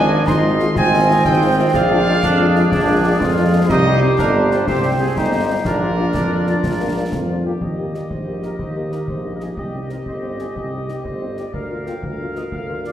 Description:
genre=military-style march for wind band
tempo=123 BPM (dotted quarters)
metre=6/8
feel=straight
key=Eb major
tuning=A4 = 440 Hz
part: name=dark trumpet section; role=melody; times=0.0-12.9 s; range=F4 to C6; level=-24 LUFS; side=right 1 dB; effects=none
part: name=warm woodwind section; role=second line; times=0.0-12.9 s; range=F4 to F5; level=-24 LUFS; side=left 1 dB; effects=none
part: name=warm trombone section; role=sustained chords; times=0.0-7.3 s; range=C4 to F4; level=-20 LUFS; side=right 2 dB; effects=none
part: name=clear tuba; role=bass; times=0.0-12.9 s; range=G1 to F2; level=-20 LUFS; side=equal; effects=none
part: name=mellow French horn section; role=accompaniment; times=0.1-12.9 s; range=G3 to Bb4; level=-27 LUFS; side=left 3 dB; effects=none
part: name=concert snare drum, concert bass drum and clash cymbals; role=drums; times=0.3-12.9 s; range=none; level=-27 LUFS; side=left 1 dB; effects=none
room=wet recital hall reverb, RT60 1.7 s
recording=recorded in a church or concert hall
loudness=-16 LUFS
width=side -10 dB against mid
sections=0.0-7.6 A section; 7.6-12.9 B section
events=none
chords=0.0 Fm7/Ab; 1.7 Bb7; 3.7 Cm; 5.7 Bb; 7.6 Eb; 9.6 Cm; 11.5 Bb/D

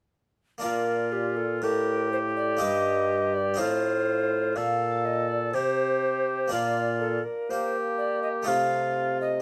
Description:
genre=classical, baroque-style sonata movement with continuo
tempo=61 BPM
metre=3/4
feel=straight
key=Bb major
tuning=A4 = 440 Hz
part: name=mellow tenor recorder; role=melody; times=0.6-9.4 s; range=G4 to F5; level=-31 LUFS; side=equal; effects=none
part: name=warm oboe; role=second line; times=0.6-9.4 s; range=F4 to A4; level=-33 LUFS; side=equal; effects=none
part: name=harpsichord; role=accompaniment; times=0.6-9.4 s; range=G2 to G4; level=-36 LUFS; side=equal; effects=none
part: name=warm bassoon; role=bass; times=0.6-9.4 s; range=G2 to Bb3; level=-32 LUFS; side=equal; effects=none
room=light reverb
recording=none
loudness=-26 LUFS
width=mono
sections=0.6-9.4 A section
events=none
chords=0.6 Bb; 2.6 Eb/G; 3.6 F7/A; 6.5 Bb; 8.5 F7/C

